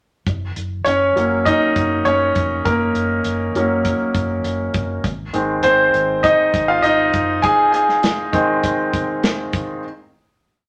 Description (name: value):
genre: piano-driven pop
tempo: 100 BPM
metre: 4/4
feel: straight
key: Ab mixolydian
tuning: A4 = 440 Hz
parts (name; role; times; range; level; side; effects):
- vintage muted fingered electric bass; bass; 0.3-7.4 s; F1 to Ab1; -30 LUFS; equal; none
- modern studio drum kit; drums; 0.3-9.7 s; hi-hat, kick drum, snare drum; -26 LUFS; equal; none
- bright grand piano; accompaniment; 0.8-9.9 s; Eb3 to Ab5; -18 LUFS; equal; none
room: wet studio reverb, RT60 0.6 s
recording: none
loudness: -18 LUFS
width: mono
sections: 0.3-9.8 verse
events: grand piano solo 0.3-9.8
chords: 0.3 Gb; 5.0 Ab